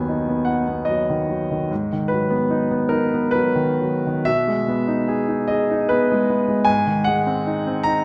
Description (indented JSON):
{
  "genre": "classical, romantic nocturne for solo piano",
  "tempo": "61-79 BPM",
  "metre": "3/4",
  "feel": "rubato",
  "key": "unclear",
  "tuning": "A4 = 439 Hz",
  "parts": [
    { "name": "clear concert grand piano", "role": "solo", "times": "0.0-8.0 s", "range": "D#2 to A#5", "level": "-20 LUFS", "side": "equal", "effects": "none" }
  ],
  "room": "moderate recital hall reverb, RT60 1.4 s",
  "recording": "dark, warm production, faint mains hum",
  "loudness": "-21 LUFS",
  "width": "mono",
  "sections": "0.0-8.0 A section",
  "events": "none",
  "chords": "0.0 B/D#; 1.7 G#m7; 4.3 G#m/B; 6.7 G#7"
}